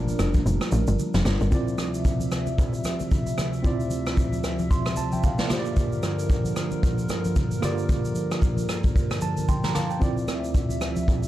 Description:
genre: amapiano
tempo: 113 BPM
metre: 4/4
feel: swing 58% on 16ths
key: D minor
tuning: A4 = 440 Hz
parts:
  - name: tine electric piano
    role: accompaniment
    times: 0.0-11.3 s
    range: A3 to C6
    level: -31 LUFS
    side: right 3 dB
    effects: overdrive, medium stereo tremolo
  - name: hollow soft pad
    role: sustained chords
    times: 0.0-11.3 s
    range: D2 to E5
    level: -29 LUFS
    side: equal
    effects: chorus
  - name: tight log drum bass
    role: bass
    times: 0.0-1.5 s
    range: F1 to A1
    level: -22 LUFS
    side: equal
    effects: none
  - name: vintage brush drum kit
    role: drums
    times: 0.1-11.3 s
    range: kick drum, rim click, shaker, snare drum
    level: -25 LUFS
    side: equal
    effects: none
  - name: congas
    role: percussion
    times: 0.1-11.1 s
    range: none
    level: -34 LUFS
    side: left 2 dB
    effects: none
room: small room reverb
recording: dark, warm production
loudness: -22 LUFS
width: side -14 dB against mid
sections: 0.0-1.5 A section; 1.5-11.3 B section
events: drop 0.0-1.5; kick muted 0.5-1.5; tine electric piano fill 9.0-10.0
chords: 0.0 Gm7; 1.5 Dm9; 5.5 Gm7; 10.0 Dm9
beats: 0.46 0.99 | 1.52 2.05 2.58 3.11 | 3.64 4.17 4.71 5.24 | 5.77 6.30 6.83 7.36 | 7.89 8.42 8.95 9.48 | 10.02 10.55 11.08

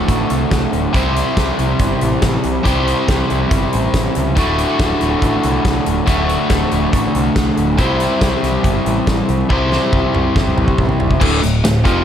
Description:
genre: classic rock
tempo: 140 BPM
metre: 4/4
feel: straight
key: D mixolydian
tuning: A4 = 440 Hz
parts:
  - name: overdriven electric guitar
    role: riff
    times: 0.0-12.0 s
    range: D2 to C5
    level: -16 LUFS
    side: equal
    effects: none
  - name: growling picked electric bass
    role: bass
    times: 0.1-12.0 s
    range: D1 to C#2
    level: -20 LUFS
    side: equal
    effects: overdrive
  - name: huge arena drum kit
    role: drums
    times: 0.1-11.9 s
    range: crash cymbal, hi-hat, kick drum, snare drum, toms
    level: -19 LUFS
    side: equal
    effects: none
room: light reverb, studio ambience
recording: none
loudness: -13 LUFS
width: side -9 dB against mid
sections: 0.0-11.2 A section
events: drum fill 9.5-11.2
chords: 0.0 D; 0.9 C; 4.4 D; 7.8 C; 11.2 D5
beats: 0.08 0.51 | 0.94 1.37 1.80 2.23 | 2.65 3.08 3.51 3.94 | 4.37 4.79 5.22 5.65 | 6.08 6.50 6.93 7.36 | 7.79 8.21 8.64 9.07 | 9.50 9.92 10.35 10.78 | 11.21 11.63

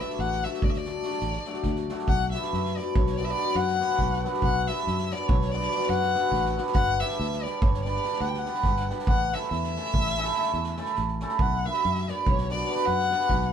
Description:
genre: balkan folk, Balkan wedding band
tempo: 283 BPM (eighths)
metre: 11/8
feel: straight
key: unclear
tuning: A4 = 442 Hz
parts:
  - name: dark violin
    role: melody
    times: 0.0-13.5 s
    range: C#5 to G5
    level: -29 LUFS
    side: left 6 dB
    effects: none
  - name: cimbalom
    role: accompaniment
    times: 0.0-13.3 s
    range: F#3 to B4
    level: -28 LUFS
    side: right 2 dB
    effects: none
  - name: soft-mallet drum kit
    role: percussion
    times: 0.0-13.5 s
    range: kick drum, snare drum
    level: -30 LUFS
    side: right 1 dB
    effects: none
  - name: fingered electric bass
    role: bass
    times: 0.2-13.5 s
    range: G1 to F#2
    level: -31 LUFS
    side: equal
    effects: none
room: moderate studio reverb, RT60 0.8 s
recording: band playing live in one room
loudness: -24 LUFS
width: side -8 dB against mid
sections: 0.0-2.1 A section; 2.1-13.5 B section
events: none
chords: 0.0 D; 2.1 Bm; 6.7 G; 9.1 A; 11.4 Bm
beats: 0.18 0.39 0.60 0.82 1.03 1.24 1.45 1.67 1.88 | 2.09 2.30 2.51 2.73 2.94 3.15 3.36 3.57 3.79 4.00 4.21 | 4.42 4.63 4.84 5.06 5.27 5.48 5.69 5.90 6.12 6.33 6.54 | 6.75 6.96 7.17 7.38 7.59 7.81 8.02 8.23 8.44 8.65 8.86 | 9.08 9.29 9.50 9.71 9.92 10.13 10.35 10.56 10.77 10.98 11.19 | 11.40 11.62 11.83 12.04 12.25 12.46 12.68 12.89 13.10 13.31 13.52

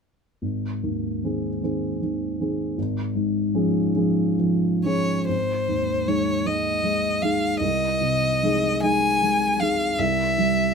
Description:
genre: classical, romantic duo for violin and grand piano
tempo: 42-53 BPM (dotted quarters)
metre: 6/8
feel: rubato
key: Ab major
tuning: A4 = 440 Hz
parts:
  - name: dark baby grand piano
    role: accompaniment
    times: 0.4-10.7 s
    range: Ab1 to Ab4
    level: -22 LUFS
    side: equal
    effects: none
  - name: clear violin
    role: melody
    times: 4.9-10.7 s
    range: C5 to Ab5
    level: -23 LUFS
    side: left 2 dB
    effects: none
room: light reverb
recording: none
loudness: -21 LUFS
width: side -6 dB against mid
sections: 0.4-5.3 A section; 5.3-10.7 B section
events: none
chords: 0.4 Ab; 2.8 Db/Ab; 5.3 Ab; 7.6 Ab/C; 10.0 C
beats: | 0.42 1.63 | 2.77 3.95 | 5.29 6.47 | 7.61 8.83 | 9.98

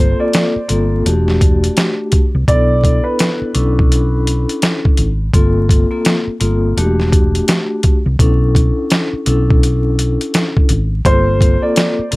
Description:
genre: hip hop, boom-bap hip-hop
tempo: 84 BPM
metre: 4/4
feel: swing 61% on 16ths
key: B minor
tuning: A4 = 440 Hz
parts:
  - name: dark upright piano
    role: melody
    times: 0.0-4.8, 11.1-12.2 s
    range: B4 to D5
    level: -19 LUFS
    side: right 1 dB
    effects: high-pass filter, low-pass filter, tape echo
  - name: vibraphone with soft mallets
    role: accompaniment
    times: 0.0-12.2 s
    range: A3 to A4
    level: -18 LUFS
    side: left 2 dB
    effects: cassette tape, high-pass filter, low-pass filter
  - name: hollow-body short-scale fingered electric bass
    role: bass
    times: 0.0-12.2 s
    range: E1 to C2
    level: -15 LUFS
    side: equal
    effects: none
  - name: boom bap sampler-style drum kit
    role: drums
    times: 0.3-12.2 s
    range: hi-hat, kick drum, snare drum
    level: -14 LUFS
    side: equal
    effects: none
room: little or no reverb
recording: vinyl crackle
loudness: -12 LUFS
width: side -22 dB against mid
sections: 0.0-12.2 A section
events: none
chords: 0.0 Gm11; 1.1 Em11; 2.5 Bm11; 5.3 Gm11; 6.8 Em11; 8.2 Bm11; 11.1 Gm11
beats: 0.34 1.05 1.77 | 2.48 3.19 3.91 4.62 | 5.34 6.05 6.77 7.48 | 8.20 8.91 9.62 10.34 | 11.05 11.77

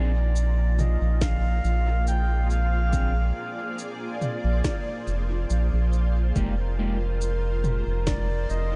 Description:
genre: ambient dub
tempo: 70 BPM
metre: 4/4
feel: straight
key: unclear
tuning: A4 = 439 Hz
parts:
  - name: dark clarinet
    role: melody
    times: 0.0-8.8 s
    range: Bb4 to G5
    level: -36 LUFS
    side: equal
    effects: dub echo
  - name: granular cloud pad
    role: sustained chords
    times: 0.0-8.8 s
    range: Bb3 to Bb5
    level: -38 LUFS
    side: equal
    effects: built-in reverb, ensemble chorus
  - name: mellow electric guitar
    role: stabs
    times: 0.0-7.0 s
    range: Ab3 to Ab4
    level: -40 LUFS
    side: equal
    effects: spring reverb, dub echo
  - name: round analog bass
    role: bass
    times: 0.0-8.8 s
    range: F1 to Bb1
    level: -25 LUFS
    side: equal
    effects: tube saturation
  - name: organic electronic drum kit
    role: drums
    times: 0.4-8.7 s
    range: shaker, snare drum, toms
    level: -36 LUFS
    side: equal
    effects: dub echo
  - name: electronic kick drum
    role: drums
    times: 1.2-8.3 s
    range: none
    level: -30 LUFS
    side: equal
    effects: none
  - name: bubbling stepped-filter texture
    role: texture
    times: 6.4-8.8 s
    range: Bb4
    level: -43 LUFS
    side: equal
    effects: chorus, built-in reverb
room: light reverb, digital ambience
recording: nothing above 11.0 kHz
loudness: -25 LUFS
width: mono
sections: 0.0-8.8 A section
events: none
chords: 0.0 Bb9; 6.4 Fm11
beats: 0.36 1.22 2.07 | 2.93 3.79 4.64 5.50 | 6.36 7.21 8.07

